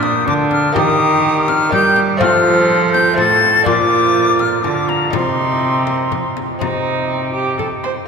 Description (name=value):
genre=classical, renaissance-style consort dance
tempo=123 BPM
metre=3/4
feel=straight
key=C dorian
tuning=A4 = 439 Hz
part: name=silver concert flute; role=melody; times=0.0-8.1 s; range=G5 to A6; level=-16 LUFS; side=left 4 dB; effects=none
part: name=warm viola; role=second line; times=0.0-7.9 s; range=D4 to C5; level=-19 LUFS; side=right 5 dB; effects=none
part: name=lute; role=accompaniment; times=0.0-8.1 s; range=A2 to G4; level=-20 LUFS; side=equal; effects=none
part: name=rich cello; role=bass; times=0.0-8.0 s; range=A2 to G3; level=-20 LUFS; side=right 1 dB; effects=none
part: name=frame drum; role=percussion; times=0.0-8.1 s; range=none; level=-25 LUFS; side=left 5 dB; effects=none
room=wet cathedral reverb, RT60 6.7 s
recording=minimal, uncompressed stereo recording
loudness=-12 LUFS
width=side -6 dB against mid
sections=0.0-6.6 A section; 6.6-8.1 B section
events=none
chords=0.0 Bb; 0.8 Eb; 2.2 F; 3.7 Bb; 5.1 Cm